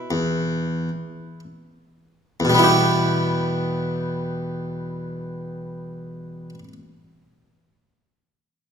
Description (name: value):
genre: classical, baroque-style suite movement for harpsichord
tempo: free time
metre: none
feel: none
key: E minor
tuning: A4 = 440 Hz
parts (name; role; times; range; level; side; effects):
- harpsichord; solo; 0.0-6.7 s; E2 to G4; -21 LUFS; equal; none
room: wet recital hall reverb, RT60 1.9 s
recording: minimal, uncompressed stereo recording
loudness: -20 LUFS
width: side -7 dB against mid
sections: 0.0-2.4 A section; 2.4-7.0 B section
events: slowing down 0.0-2.4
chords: 0.0 E5; 2.4 Em